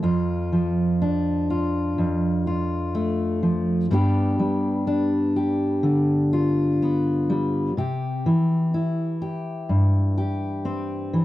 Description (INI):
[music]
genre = folk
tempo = 62 BPM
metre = 4/4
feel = straight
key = unclear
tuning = A4 = 440 Hz
[part]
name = fingerpicked steel-string acoustic guitar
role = solo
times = 0.0-11.2 s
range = F2 to G4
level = -20 LUFS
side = equal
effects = none
[sound]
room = moderate booth ambience, RT60 0.2 s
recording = dry, close 1970s-style studio recording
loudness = -20 LUFS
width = side -15 dB against mid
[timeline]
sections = 0.0-11.2 A section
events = none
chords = 0.1 Dm/F; 3.9 G; 7.8 C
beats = | 0.05 1.01 1.98 2.94 | 3.90 4.87 5.83 6.79 | 7.76 8.72 9.69 10.65